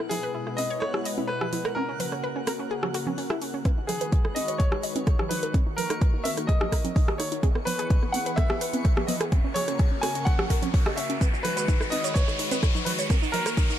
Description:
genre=progressive house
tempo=127 BPM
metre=4/4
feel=straight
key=G# minor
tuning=A4 = 441 Hz
part: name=lush unison pad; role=sustained chords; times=0.0-13.8 s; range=B2 to B4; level=-35 LUFS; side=left 1 dB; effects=chorus, sidechain pumping
part: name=analog pluck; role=arpeggios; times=0.0-13.8 s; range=B3 to D#5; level=-34 LUFS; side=equal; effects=chorus, sidechain pumping, dub echo
part: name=backwards swelling texture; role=texture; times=0.0-13.8 s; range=F#5 to C#6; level=-42 LUFS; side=equal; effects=built-in reverb, sidechain pumping
part: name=bright grand piano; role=melody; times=0.1-13.8 s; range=G#4 to G#5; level=-31 LUFS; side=left 1 dB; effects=low-pass filter, tape echo
part: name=pop drum kit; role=drums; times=0.1-13.8 s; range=hi-hat, rim click, shaker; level=-32 LUFS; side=right 1 dB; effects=overdrive
part: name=electronic congas and rim click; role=percussion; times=0.1-13.6 s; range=none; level=-33 LUFS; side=right 5 dB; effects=sidechain pumping on perc, sidechain pumping on snare
part: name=electronic kick drum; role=drums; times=3.7-13.7 s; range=none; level=-23 LUFS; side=equal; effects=none
part: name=riser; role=sound effects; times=5.7-13.8 s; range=none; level=-35 LUFS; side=equal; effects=none
room=little or no reverb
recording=lossy compression artefacts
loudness=-23 LUFS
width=side -11 dB against mid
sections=0.0-3.7 A section; 3.7-13.8 B section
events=filter sweep on synth arpeggio sound 0.0-3.7, 3.7-13.8; build-up 3.7-13.8; riser 5.7-13.8; drum fill 11.2-13.8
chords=0.0 E; 1.8 F#; 3.7 G#m7; 5.5 D#m; 7.4 E; 9.3 F#; 11.2 G#m7; 13.1 D#m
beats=0.34 0.82 1.29 | 1.76 2.23 2.71 3.18 | 3.65 4.12 4.60 5.07 | 5.54 6.01 6.49 6.96 | 7.43 7.90 8.38 8.85 | 9.32 9.79 10.27 10.74 | 11.21 11.68 12.16 12.63 | 13.10 13.57

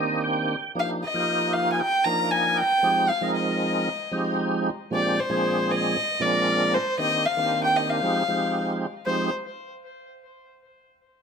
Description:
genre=jazz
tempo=116 BPM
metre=4/4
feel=straight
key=F dorian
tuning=A4 = 439 Hz
part: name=tonewheel organ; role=accompaniment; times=0.0-9.3 s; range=Bb2 to G5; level=-25 LUFS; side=right 2 dB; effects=slow rotary speaker, overdrive, chorus vibrato
part: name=rich violin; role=melody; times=0.8-9.3 s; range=C5 to Bb5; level=-24 LUFS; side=left 1 dB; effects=tape echo
room=moderate studio reverb, RT60 0.8 s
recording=none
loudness=-21 LUFS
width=side -6 dB against mid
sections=0.0-9.1 A section; 9.1-11.1 B section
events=tonewheel organ fill 0.0-0.8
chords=0.0 Cm9; 0.8 Ebmaj9; 2.8 Fm9; 4.9 Bb13; 7.0 Cm9; 8.0 Fm9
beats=0.24 | 0.76 1.27 1.79 2.31 | 2.83 3.35 3.87 4.38 | 4.90 5.42 5.94 6.46 | 6.98 7.50 8.02 8.54 | 9.06

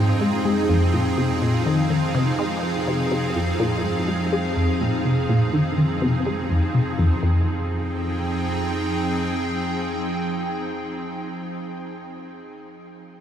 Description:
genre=ambient, sequencer-driven space music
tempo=124 BPM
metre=4/4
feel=straight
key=F minor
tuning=A4 = 440 Hz
part: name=evolving wavetable pad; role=sustained chords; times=0.0-11.7 s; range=F3 to G5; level=-24 LUFS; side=right 1 dB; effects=ensemble chorus, built-in reverb, shimmer reverb
part: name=clean electric guitar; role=arpeggios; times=0.0-7.5 s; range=C4 to C5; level=-39 LUFS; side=left 1 dB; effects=none
part: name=resonant blip pluck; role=riff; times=0.0-7.5 s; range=F2 to Ab3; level=-22 LUFS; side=left 1 dB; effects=phaser, cassette tape, analog delay
part: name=analog drone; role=bass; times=0.0-8.6 s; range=F2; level=-31 LUFS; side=equal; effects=chorus
room=wet huge ambient reverb, RT60 7.9 s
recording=none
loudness=-20 LUFS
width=side -9 dB against mid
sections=0.0-7.2 A section; 7.2-11.1 B section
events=filter sweep on synth arpeggio sound 0.0-7.2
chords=0.0 Fm7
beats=0.46 0.94 | 1.42 1.91 2.39 2.87 | 3.36 3.84 4.33 4.81 | 5.29 5.78 6.26 6.75 | 7.23 7.71 8.20 8.68 | 9.16 9.65 10.13 10.62

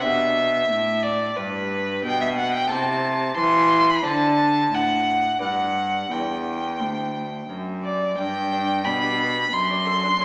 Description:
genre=classical, baroque-style sonata movement with continuo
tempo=89 BPM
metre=4/4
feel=straight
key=G major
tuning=A4 = 439 Hz
part: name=rich violin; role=melody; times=0.0-10.2 s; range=B4 to C6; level=-24 LUFS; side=equal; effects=none
part: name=lute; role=accompaniment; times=0.0-10.2 s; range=D2 to D5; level=-32 LUFS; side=equal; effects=none
part: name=rich cello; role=bass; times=0.0-10.2 s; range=D2 to F#3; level=-29 LUFS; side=equal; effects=none
room=wet recital hall reverb, RT60 1.5 s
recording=small speaker sound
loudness=-22 LUFS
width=mono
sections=0.0-8.2 A section; 8.2-10.2 B section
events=none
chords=0.0 G; 2.7 Am/C; 4.0 D7; 5.4 G; 9.5 D7/F#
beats=| 0.04 0.70 1.37 2.04 | 2.70 3.37 4.04 4.72 | 5.41 6.10 6.79 7.48 | 8.18 8.86 9.53 10.21

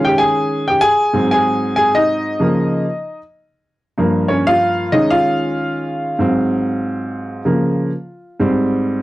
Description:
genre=hip hop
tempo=95 BPM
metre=4/4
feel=swing 58% on 16ths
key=unclear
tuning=A4 = 440 Hz
part: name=clear upright piano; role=solo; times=0.0-9.0 s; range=G2 to Ab5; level=-14 LUFS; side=equal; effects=none
room=moderate studio reverb, RT60 0.5 s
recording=dry, gritty hardware recording, transformer saturation, cassette tape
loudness=-14 LUFS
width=side -17 dB against mid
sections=0.0-9.0 A section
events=upright piano solo 0.0-9.0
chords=0.0 Eb7sus4; 1.1 Ab7; 2.4 Db6; 4.0 Gm7b5; 4.9 Eb9sus4; 6.2 Ab7; 7.5 Db6; 8.4 Abmaj7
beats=0.19 0.82 | 1.46 2.09 2.72 3.35 | 3.98 4.61 5.24 5.88 | 6.51 7.14 7.77 8.40

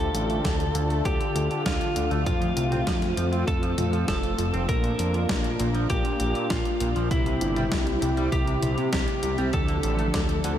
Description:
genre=synthwave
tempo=99 BPM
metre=4/4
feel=straight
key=D minor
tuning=A4 = 440 Hz
part: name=lightly driven lead guitar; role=melody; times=0.0-10.6 s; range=E4 to Bb4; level=-29 LUFS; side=equal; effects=diffuse ambient delay
part: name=brassy analog pad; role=sustained chords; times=0.0-10.6 s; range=C3 to A4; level=-29 LUFS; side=left 1 dB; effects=chorus, sidechain pumping
part: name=clean electric guitar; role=riff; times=0.0-10.5 s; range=Bb2 to C4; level=-36 LUFS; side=right 2 dB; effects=analog chorus, low-pass filter, diffuse ambient delay
part: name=fat analog bass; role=bass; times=0.0-10.6 s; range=F1 to F2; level=-27 LUFS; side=equal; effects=sidechain pumping
part: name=gated 80s digital drum machine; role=drums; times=0.0-10.6 s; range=hi-hat, snare drum, toms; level=-32 LUFS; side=equal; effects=gated reverb, gated reverb snare, overdrive
part: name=electronic kick drum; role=drums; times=0.4-10.3 s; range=none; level=-29 LUFS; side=equal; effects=none
room=moderate huge ambient reverb, RT60 9.2 s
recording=dreamy mix soaked in reverb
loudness=-22 LUFS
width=side -10 dB against mid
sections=0.0-10.6 A section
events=filter sweep on clean electric guitar 0.0-10.6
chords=0.0 Dm; 2.3 F; 4.7 Bb; 7.1 C; 9.5 Dm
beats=0.45 1.05 1.66 | 2.26 2.87 3.48 4.08 | 4.69 5.29 5.90 6.51 | 7.11 7.72 8.32 8.93 | 9.54 10.14

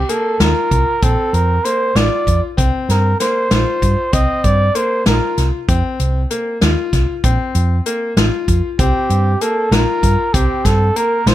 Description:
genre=progressive instrumental, band music in an uneven meter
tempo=193 BPM (eighths)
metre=5/8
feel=straight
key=C dorian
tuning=A4 = 437 Hz
part: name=breathy trumpet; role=melody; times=0.0-5.5, 8.8-11.3 s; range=G4 to Eb5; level=-18 LUFS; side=right 1 dB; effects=plate reverb
part: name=hollow-body short-scale fingered electric bass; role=bass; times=0.0-11.3 s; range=A1 to G2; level=-16 LUFS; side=right 1 dB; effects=none
part: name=bright grand piano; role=arpeggios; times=0.1-11.3 s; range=Bb3 to F4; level=-21 LUFS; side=left 4 dB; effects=plate reverb, tape echo
part: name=swinging big-band drum kit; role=drums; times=0.1-11.3 s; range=hi-hat, kick drum, snare drum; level=-18 LUFS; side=equal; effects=none
room=light reverb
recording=none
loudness=-13 LUFS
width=side -13 dB against mid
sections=0.0-11.3 A section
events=none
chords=0.0 F7sus4; 1.0 Bb5; 2.6 C5; 5.7 Fsus4; 7.2 Bb5; 8.8 C5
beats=0.09 0.40 0.71 | 1.02 1.34 1.65 1.96 2.27 | 2.58 2.89 3.20 3.51 3.82 | 4.13 4.44 4.75 5.06 5.37 | 5.68 6.00 6.30 6.62 6.93 | 7.24 7.55 7.86 8.17 8.48 | 8.79 9.10 9.41 9.72 10.03 | 10.34 10.65 10.96 11.27

